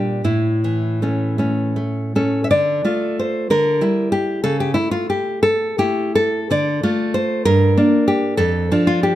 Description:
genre	romantic piece for solo classical guitar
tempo	51-65 BPM (dotted quarters)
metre	6/8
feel	rubato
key	D minor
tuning	A4 = 441 Hz
part	nylon-string guitar	solo	0.0-9.2 s	F2 to E5	-16 LUFS	equal	none
room	light reverb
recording	close, detailed microphones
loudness	-16 LUFS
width	side -13 dB against mid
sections	0.0-2.5 A section; 2.5-9.2 B section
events	none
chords	0.3 A; 2.5 Dm; 3.5 Em7b5/D; 4.5 A/C#; 6.5 Dm; 7.5 Gm; 8.4 Dm/F

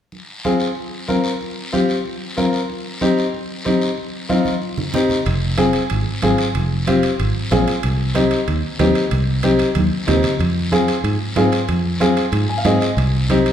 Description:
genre	latin, cumbia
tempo	187 BPM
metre	4/4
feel	straight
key	F minor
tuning	A4 = 441 Hz
part	congas	percussion	0.1-13.5 s	none	-24 LUFS	equal	none
part	guiro	percussion	0.1-13.5 s	none	-30 LUFS	left 1 dB	none
part	clear upright piano	accompaniment	0.4-13.5 s	C4 to Ab5	-19 LUFS	left 1 dB	none
part	fingered electric bass	bass	5.3-13.5 s	F1 to Ab2	-19 LUFS	right 1 dB	none
part	timbales	percussion	5.3-13.5 s	none	-28 LUFS	right 5 dB	none
room	wet large studio reverb, RT60 1.4 s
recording	band playing live in one room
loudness	-16 LUFS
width	side -9 dB against mid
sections	0.1-5.3 A section; 5.3-13.5 B section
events	drum fill 4.5-5.3, 9.8-10.4; upright piano fill 12.3-13.0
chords	0.1 F5; 2.7 Cm; 5.3 Fm; 7.8 Cm; 10.4 Fm; 13.0 Cm

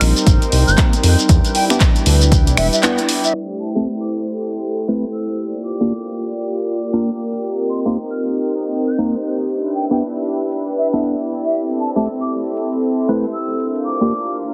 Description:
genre	deep house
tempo	117 BPM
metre	4/4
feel	swing 60% on 16ths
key	unclear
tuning	A4 = 437 Hz
part	warm analog pad	sustained chords	0.0-14.5 s	G3 to F5	-24 LUFS	equal	chorus, sidechain pumping
part	round analog bass	bass	0.0-2.7 s	E1 to F2	-16 LUFS	equal	none
part	punchy analog drum machine	drums	0.0-14.3 s	crash cymbal, finger snaps, handclaps, hi-hat	-23 LUFS	equal	none
part	warbly tape-like pad	texture	0.0-14.5 s	Eb4 to D6	-27 LUFS	equal	chorus, built-in reverb, sidechain pumping
part	shekere	percussion	0.2-3.3 s	none	-25 LUFS	equal	none
part	electronic kick drum	drums	0.3-2.4 s	none	-16 LUFS	equal	none
part	hollow concert flute	melody	0.7-14.4 s	E5 to G6	-27 LUFS	equal	tape echo
part	percussive organ stab	stabs	0.8-14.1 s	A3 to B4	-25 LUFS	equal	analog chorus, sidechain pumping, tape echo
room	moderate plate reverb, RT60 2.3 s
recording	heavily compressed radio sound, multiband compression, low-pass filter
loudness	-18 LUFS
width	mono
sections	0.0-3.3 A section; 3.3-14.5 B section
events	break 2.8-3.3; band accent 2.8; filter sweep 3.3-14.5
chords	0.0 Cm7; 1.3 Em7; 3.3 Am7; 5.4 Gm7; 7.4 Cm7; 9.5 Em7; 11.5 Am7; 13.6 Gm7

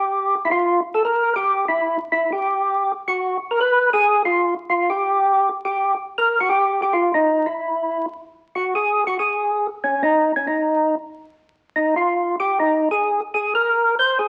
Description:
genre	jazz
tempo	187 BPM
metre	4/4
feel	swing 64% on 8ths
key	unclear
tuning	A4 = 440 Hz
part	percussive tonewheel organ	solo	0.0-14.3 s	Db4 to C5	-20 LUFS	equal	overdrive, slow rotary speaker
room	wet studio reverb, RT60 0.8 s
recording	very old 78 rpm record, vinyl crackle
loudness	-20 LUFS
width	mono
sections	0.0-8.2 A section; 8.2-14.3 B section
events	tonewheel organ solo 8.2-14.3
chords	none

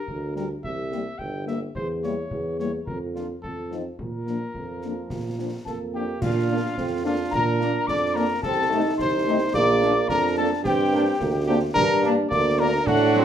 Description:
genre	military-style march for wind band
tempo	108 BPM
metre	2/4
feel	straight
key	Bb major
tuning	A4 = 440 Hz
part	warm cornet	melody	0.0-13.2 s	F4 to G5	-28 LUFS	equal	none
part	warm tuba	bass	0.1-13.2 s	G1 to Bb2	-26 LUFS	right 2 dB	none
part	concert bass drum, concert snare drum and clash cymbals	drums	0.1-13.2 s	none	-35 LUFS	left 1 dB	none
part	dark French horn section	accompaniment	0.3-13.2 s	F3 to G4	-30 LUFS	left 4 dB	none
part	clear euphonium	second line	4.6-13.2 s	F3 to Eb4	-27 LUFS	right 5 dB	none
part	mellow wooden piccolo	second line	5.7-13.2 s	F5 to D6	-27 LUFS	left 5 dB	none
part	warm trombone section	sustained chords	6.5-13.2 s	F#3 to Eb4	-30 LUFS	right 3 dB	none
room	moderate large studio reverb, RT60 0.8 s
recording	minimal, uncompressed stereo recording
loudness	-21 LUFS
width	side -9 dB against mid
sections	0.0-6.2 A section; 6.2-13.2 A section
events	none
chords	0.0 Gm; 0.6 C7; 1.8 Edim7; 2.9 Bb/F; 3.4 F7; 4.0 Bb; 8.4 Adim/C; 9.5 Bb; 10.7 Gm

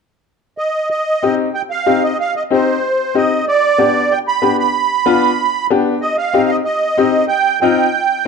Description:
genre	latin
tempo	188 BPM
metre	4/4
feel	straight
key	C harmonic minor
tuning	A4 = 440 Hz
part	musette accordion	melody	0.6-8.3 s	C5 to B5	-15 LUFS	right 5 dB	none
part	bright upright piano	accompaniment	1.2-7.8 s	B3 to G4	-16 LUFS	left 5 dB	none
room	moderate large studio reverb, RT60 1.2 s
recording	dark, warm production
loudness	-13 LUFS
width	side -5 dB against mid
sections	0.9-6.0 A section; 6.0-8.3 B section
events	none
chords	0.0 N.C.; 0.9 Cm; 3.5 G; 6.0 Cm

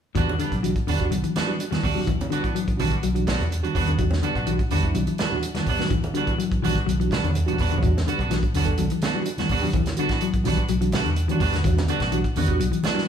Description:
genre	afrobeat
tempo	125 BPM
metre	4/4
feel	straight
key	E minor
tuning	A4 = 439 Hz
part	reed electric piano	accompaniment	0.1-13.1 s	G3 to A4	-31 LUFS	right 7 dB	fast tremolo
part	clean electric guitar	arpeggios	0.1-13.1 s	D3 to G3	-28 LUFS	left 7 dB	none
part	clean electric guitar	stabs	0.2-13.0 s	G3 to F#4	-28 LUFS	right 4 dB	none
part	fingered electric bass	bass	0.2-13.0 s	B1 to E3	-26 LUFS	equal	none
part	warm soul drum kit	drums	0.2-13.0 s	hi-hat, kick drum, snare drum	-27 LUFS	equal	none
part	congas	percussion	0.2-13.0 s	none	-30 LUFS	right 3 dB	none
room	wet large studio reverb, RT60 1.2 s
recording	band playing live in one room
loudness	-21 LUFS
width	side -8 dB against mid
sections	0.2-13.1 A section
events	drum fill 7.1-7.8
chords	0.2 Em9

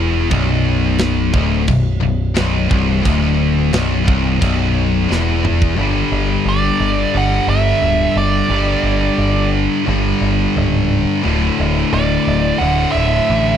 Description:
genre	heavy metal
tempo	88 BPM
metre	4/4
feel	straight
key	unclear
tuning	A4 = 440 Hz
part	heavy high-gain guitar	riff	0.0-13.6 s	B1 to G3	-19 LUFS	left 10 dB	distortion
part	scooped high-gain guitar	riff	0.0-13.6 s	B1 to G3	-20 LUFS	right 9 dB	distortion
part	growling picked electric bass	bass	0.0-13.5 s	B0 to A1	-18 LUFS	right 1 dB	overdrive
part	tight metal drum kit	drums	0.3-5.8 s	crash cymbal, kick drum, snare drum, toms	-20 LUFS	right 1 dB	none
part	nasal lead guitar with a parked wah	melody	6.5-13.6 s	D5 to F#5	-18 LUFS	right 4 dB	overdrive
room	studio reverb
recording	dry, close 1970s-style studio recording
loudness	-13 LUFS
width	side -9 dB against mid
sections	0.0-5.8 A section; 5.8-13.6 B section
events	drum fill 5.1-5.8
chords	0.0 Bm; 5.8 G5; 11.2 D5

